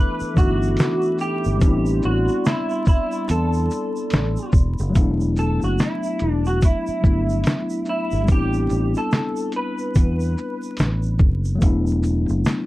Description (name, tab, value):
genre	lo-fi hip hop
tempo	72 BPM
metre	4/4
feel	swing 60% on 16ths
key	A dorian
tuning	A4 = 440 Hz
part	electric guitar through a small old amp	melody	0.0-11.2 s	E4 to B4	-25 LUFS	right 1 dB	ensemble chorus
part	mellow tine electric piano	accompaniment	0.0-12.7 s	E3 to E4	-24 LUFS	left 2 dB	cassette tape
part	warbly tape-like pad	sustained chords	0.0-4.9 s	G3 to D6	-34 LUFS	right 1 dB	chorus, built-in reverb
part	fingered electric bass	bass	0.2-12.4 s	E1 to E2	-22 LUFS	equal	none
part	egg shaker	percussion	0.2-12.7 s	none	-44 LUFS	right 5 dB	none
part	lo-fi sampler-style drum kit	drums	0.4-12.7 s	hi-hat, kick drum, shaker, snare drum	-17 LUFS	equal	vintage 12-bit sampler grit
room	light reverb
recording	dark, warm production, vinyl crackle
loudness	-18 LUFS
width	side -17 dB against mid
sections	0.0-5.0 A section; 5.0-12.7 B section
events	none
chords	0.0 E7sus4; 1.6 Am11; 5.0 E7sus4; 8.3 Am11; 11.6 E7sus4